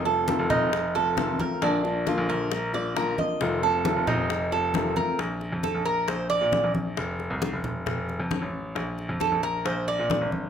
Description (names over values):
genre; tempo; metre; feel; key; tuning
latin, Cuban son and guajira; 134 BPM; 4/4; straight; Bb major; A4 = 440 Hz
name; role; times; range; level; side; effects
fingerpicked steel-string acoustic guitar; accompaniment; 0.0-5.2 s; C3 to F4; -29 LUFS; left 4 dB; none
Cuban tres; arpeggios; 0.0-10.3 s; D4 to Eb5; -26 LUFS; right 3 dB; none
clear baby grand piano; bass; 0.0-10.5 s; F1 to Bb2; -30 LUFS; equal; none
bongos; percussion; 0.1-10.3 s; none; -35 LUFS; left 8 dB; none
congas; percussion; 0.1-10.5 s; none; -33 LUFS; equal; none
room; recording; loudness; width
light reverb; none; -24 LUFS; side -8 dB against mid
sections
0.0-5.2 A section; 5.2-10.5 B section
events
Cuban tres solo 5.2-10.5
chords
0.0 F7; 1.6 Bb; 3.4 F7; 5.2 Bb; 7.0 F; 8.8 Bb